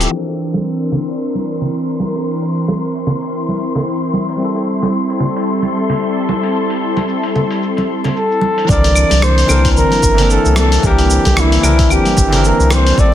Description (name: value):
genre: sunset chillout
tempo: 112 BPM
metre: 4/4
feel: swing 58% on 16ths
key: unclear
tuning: A4 = 440 Hz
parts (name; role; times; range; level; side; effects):
- bell-like tine electric piano; accompaniment; 0.0-13.1 s; E3 to Bb4; -21 LUFS; moving between left 5 dB and right 3 dB; auto-pan, low-pass filter, tape echo
- lush unison pad; sustained chords; 0.0-13.1 s; D3 to A5; -19 LUFS; left 1 dB; chorus
- warm sub bass; bass; 0.0-0.1, 8.7-13.1 s; G1 to C2; -14 LUFS; equal; none
- dusty soul sampler-style drum kit; drums; 0.0-13.1 s; cabasa, claves, hi-hat, rim click; -20 LUFS; left 1 dB; low-pass filter on perc, low-pass filter on hats, soft clipping on snare, low-pass filter on snare, low-pass filter on room
- wind-like tuned noise texture; texture; 0.0-8.7 s; C6 to E6; -27 LUFS; left 4 dB; built-in reverb
- bongos and congas; percussion; 0.3-12.8 s; none; -20 LUFS; right 2 dB; none
- breathy flugelhorn; melody; 8.2-13.1 s; E4 to D5; -16 LUFS; equal; tape echo
- electronic kick drum; drums; 8.7-13.1 s; none; -16 LUFS; equal; overdrive
room: light reverb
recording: dense, heavily limited modern master, low-pass filter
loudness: -12 LUFS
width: side -11 dB against mid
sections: 0.1-8.7 A section; 8.7-13.1 B section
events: filter sweep on tine electric piano 0.1-8.7; filter sweep 0.1-8.7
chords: 0.1 C9; 4.4 Am7; 8.4 C9